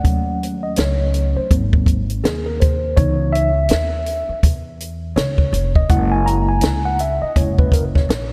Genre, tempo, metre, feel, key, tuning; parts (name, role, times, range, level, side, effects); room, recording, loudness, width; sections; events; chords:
hip hop, jazz-hop; 82 BPM; 4/4; swing 61% on 16ths; A4 = 440 Hz
mellow tine electric piano; accompaniment; 0.0-8.3 s; E3 to A#5; -24 LUFS; equal
upright bass; bass; 0.0-8.3 s; E#1 to E2; -23 LUFS; equal
compact cocktail drum kit; drums; 0.0-8.3 s; hi-hat, kick drum, snare drum; -20 LUFS; equal
light reverb, small room ambience; -18 LUFS; mono
0.0-8.3 A section
tine electric piano solo 0.0-8.3
0.0 D#m7b5; 1.5 G#7; 3.0 C#m7; 5.9 F#7